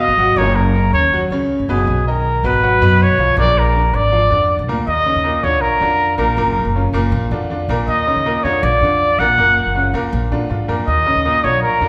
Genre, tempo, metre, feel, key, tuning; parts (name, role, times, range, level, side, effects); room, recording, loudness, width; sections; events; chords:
latin, Cuban son and guajira; 160 BPM; 4/4; straight; Eb minor; A4 = 440 Hz
breathy trumpet; melody; 0.0-11.9 s; Ab4 to Gb5; -18 LUFS; equal
bright grand piano; arpeggios; 0.0-11.9 s; Bb2 to Gb5; -23 LUFS; equal
upright bass; bass; 0.0-11.9 s; Gb1 to Bb2; -21 LUFS; equal
wet large studio reverb, RT60 1.4 s; band playing live in one room; -16 LUFS; mono
0.0-4.9 A section; 4.9-11.9 B section
0.4 Gb; 1.9 B; 3.4 Bb; 4.9 Eb5; 5.6 Bb; 6.4 Gbmaj7; 7.1 Bb; 7.9 Eb5; 8.6 Bb; 9.4 Gbmaj7; 10.1 Bb7; 10.9 Eb5